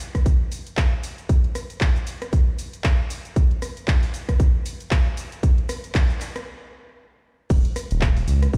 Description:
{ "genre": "deep house", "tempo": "116 BPM", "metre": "4/4", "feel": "swing 57% on 16ths", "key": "unclear", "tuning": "A4 = 441 Hz", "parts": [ { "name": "punchy analog drum machine", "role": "drums", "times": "0.0-8.6 s", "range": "cabasa, crash cymbal, handclaps, hi-hat, rim click", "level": "-33 LUFS", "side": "equal", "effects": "none" }, { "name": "electronic kick drum", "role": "drums", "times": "0.1-8.6 s", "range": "none", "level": "-21 LUFS", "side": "equal", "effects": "none" }, { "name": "smooth synth bass", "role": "bass", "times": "7.5-8.6 s", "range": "Eb1 to Db2", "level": "-23 LUFS", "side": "equal", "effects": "sidechain pumping" } ], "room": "little or no reverb", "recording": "played on a big sound system in a bare room, stone room reverb", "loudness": "-22 LUFS", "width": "mono", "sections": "0.0-7.5 A section; 7.5-8.6 B section", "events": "build-up 0.0-7.5; stop 6.5-7.5; drop 7.5-8.6", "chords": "none", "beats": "0.26 0.78 | 1.29 1.81 2.33 2.85 | 3.36 3.88 4.40 4.92 | 5.43 5.95 6.47 6.98 | 7.50 8.02 8.54" }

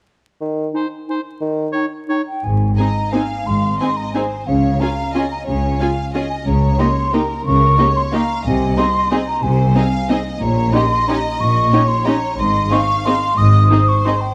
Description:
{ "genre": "classical, orchestral ballroom waltz", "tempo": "180 BPM", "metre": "3/4", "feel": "uneven beats, rubato", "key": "Ab major", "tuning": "A4 = 437 Hz", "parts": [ { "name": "warm bassoon", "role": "accompaniment", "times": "0.4-1.7 s", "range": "Eb3", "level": "-25 LUFS", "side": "equal", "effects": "none" }, { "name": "mellow clarinet", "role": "second line", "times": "0.7-2.2 s", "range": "Eb4", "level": "-26 LUFS", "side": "equal", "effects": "none" }, { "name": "mellow hollow concert flute", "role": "second line", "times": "0.7-14.3 s", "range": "F5 to Eb6", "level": "-22 LUFS", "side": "equal", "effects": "none" }, { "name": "bright oboe", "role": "second line", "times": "0.8-2.2 s", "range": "C5 to Db5", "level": "-29 LUFS", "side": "equal", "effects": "none" }, { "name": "dark symphonic cello section", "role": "bass", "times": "2.4-13.6 s", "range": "Ab2 to Db3", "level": "-24 LUFS", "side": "equal", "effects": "none" }, { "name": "warm studio double bass section", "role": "bass", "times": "2.4-13.6 s", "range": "Ab1 to Db2", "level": "-21 LUFS", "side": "equal", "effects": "none" }, { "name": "rich symphonic violin section", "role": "melody", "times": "2.8-14.3 s", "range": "Bb4 to F5", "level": "-29 LUFS", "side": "equal", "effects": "none" }, { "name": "warm studio violin section", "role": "second line", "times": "2.8-14.1 s", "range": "G4 to Ab5", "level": "-31 LUFS", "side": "equal", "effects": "none" }, { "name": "rich symphonic viola section", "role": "accompaniment", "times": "2.8-14.1 s", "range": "Bb3 to F4", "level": "-24 LUFS", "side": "equal", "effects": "none" } ], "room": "moderate scoring stage reverb, RT60 2.0 s", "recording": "close, detailed microphones, vinyl crackle", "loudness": "-17 LUFS", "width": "mono", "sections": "0.4-2.4 A section; 2.4-14.3 B section", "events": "none", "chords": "0.4 Ab/Eb (rootless); 2.4 Ab; 4.5 Db; 6.5 Eb7(no3)/Db; 8.5 Ab/C; 10.4 Eb7(no3)/Bb; 12.4 Ab", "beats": "| 0.41 0.74 1.09 | 1.41 1.73 2.09 | 2.44 2.78 3.13 | 3.46 3.80 4.14 | 4.47 4.80 5.15 | 5.47 5.80 6.14 | 6.46 6.79 7.14 | 7.47 7.79 8.14 | 8.46 8.78 9.12 | 9.44 9.76 10.10 | 10.41 10.74 11.08 | 11.40 11.72 12.05 | 12.38 12.71 13.05 | 13.38 13.71 14.05" }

